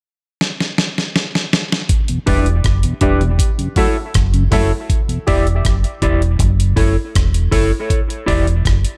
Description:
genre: dub reggae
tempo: 80 BPM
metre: 4/4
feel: straight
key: unclear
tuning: A4 = 440 Hz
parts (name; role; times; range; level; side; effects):
- dusty soul sampler-style drum kit; drums; 0.4-9.0 s; hi-hat, kick drum, rim click, snare drum; -19 LUFS; equal; none
- mellow tonewheel organ; accompaniment; 2.1-5.2 s; E2 to E4; -25 LUFS; equal; chorus vibrato, slow rotary speaker
- mellow electric guitar; accompaniment; 2.3-8.5 s; D4 to D5; -23 LUFS; equal; tape echo
- percussive organ stab; stabs; 2.3-5.5 s; E4 to E5; -28 LUFS; equal; chorus, tape echo
- deep dub fingered electric bass; bass; 2.3-8.8 s; E1 to F#1; -18 LUFS; equal; none
room: little or no reverb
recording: none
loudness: -16 LUFS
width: mono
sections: 0.0-1.9 A section; 1.9-9.0 B section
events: drum fill 0.4-1.9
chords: 0.0 N.C.; 1.9 Em7; 3.4 F#m7; 4.9 Em7; 6.4 F#m7; 7.9 Em7

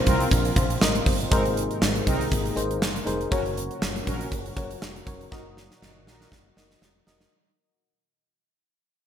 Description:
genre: 1980s-style pop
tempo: 120 BPM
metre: 4/4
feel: swing 55% on 16ths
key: unclear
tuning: A4 = 440 Hz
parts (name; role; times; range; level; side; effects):
- FM electric piano; accompaniment; 0.0-7.3 s; Ab2 to F5; -29 LUFS; left 2 dB; chorus
- sweeping resonant pad; sustained chords; 0.0-7.3 s; Bb2 to Gb4; -34 LUFS; right 1 dB; chorus
- analog synth brass; stabs; 0.1-6.3 s; C4 to Bb4; -34 LUFS; right 1 dB; chorus, ping-pong delay
- woody fretless electric bass; bass; 0.1-7.2 s; F1 to C2; -31 LUFS; equal; analog chorus
- gated 80s drum kit; drums; 0.1-7.3 s; hi-hat, kick drum, snare drum; -25 LUFS; equal; gated reverb
room: moderate plate reverb, RT60 2.3 s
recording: bright 1980s-style digital production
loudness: -22 LUFS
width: side -9 dB against mid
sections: 0.0-7.3 A section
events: fade-out 0.0-7.3; drum fill 5.3-7.3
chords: 0.0 Bbsus2; 1.3 Abadd9; 3.3 Gb; 5.3 Ebm/Gb

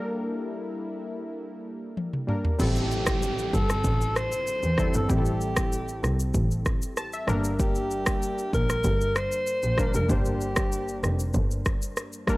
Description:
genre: afrobeats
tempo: 96 BPM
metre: 4/4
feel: straight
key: unclear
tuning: A4 = 436 Hz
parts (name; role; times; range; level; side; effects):
- warm analog keys; accompaniment; 0.0-12.4 s; G3 to A5; -32 LUFS; left 1 dB; chorus, low-pass filter
- lush unison pad; sustained chords; 0.0-2.6 s; Bb3 to G4; -37 LUFS; equal; chorus, low-pass filter
- afro-pop drum kit; drums; 2.0-12.4 s; crash cymbal, kick drum, rim click, shaker, toms; -27 LUFS; equal; none
- warm alto saxophone; melody; 2.6-11.3 s; G4 to C5; -29 LUFS; equal; analog delay
- rich double bass; bass; 2.6-11.7 s; F1 to E2; -27 LUFS; equal; none
- downlifter; sound effects; 2.6-7.6 s; none; -37 LUFS; equal; none
room: little or no reverb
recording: dry, gritty hardware recording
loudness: -24 LUFS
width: side -20 dB against mid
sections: 0.0-2.6 A section; 2.6-12.4 B section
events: drum fill 2.0-2.6; synth keys fill 6.7-7.6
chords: 0.0 Gm; 2.6 Am7; 7.3 Gm

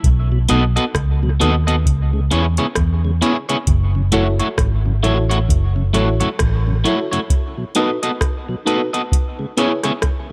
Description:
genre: dub reggae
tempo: 66 BPM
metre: 4/4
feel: swing 59% on 16ths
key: F# dorian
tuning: A4 = 440 Hz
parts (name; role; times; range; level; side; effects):
- vintage muted fingered electric bass; bass; 0.0-6.8 s; F#1 to E2; -19 LUFS; equal; none
- soft vintage rhythm box; drums; 0.0-10.3 s; hi-hat, kick drum, rim click; -21 LUFS; equal; none
- mellow tonewheel organ; accompaniment; 0.3-10.3 s; F#2 to E4; -28 LUFS; equal; slow rotary speaker, dub echo
- electric guitar at the edge of break-up; accompaniment; 0.5-9.9 s; A3 to D#5; -24 LUFS; equal; dub echo
- dark concert grand piano; stabs; 4.1-9.7 s; D#4 to C#5; -27 LUFS; equal; dub echo
room: little or no reverb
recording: none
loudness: -18 LUFS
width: mono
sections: 0.0-10.3 A section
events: break 0.0-3.7, 7.3-10.3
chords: 0.0 B7; 1.9 C#m7; 3.7 F#m7; 7.3 B7; 9.1 C#m7

